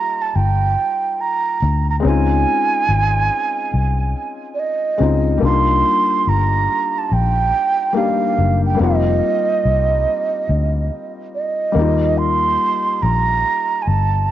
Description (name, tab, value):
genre	lo-fi hip hop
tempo	71 BPM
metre	4/4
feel	swing 65% on 16ths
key	unclear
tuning	A4 = 438 Hz
part	breathy mellow concert flute	melody	0.0-14.3 s	D5 to C6	-18 LUFS	right 5 dB	low-pass filter
part	felt-muted upright piano	accompaniment	0.0-14.3 s	G3 to G4	-22 LUFS	left 7 dB	cassette tape, low-pass filter
part	vintage muted fingered electric bass	bass	0.4-14.3 s	F1 to Eb2	-17 LUFS	left 1 dB	none
room	light reverb, small room reverb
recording	home recording on cassette, nothing above 7.6 kHz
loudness	-15 LUFS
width	side -12 dB against mid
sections	0.0-14.3 A section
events	none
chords	0.0 Ebmaj7; 2.0 Dbmaj9; 5.4 Cm11; 8.8 F9sus4; 11.8 Eb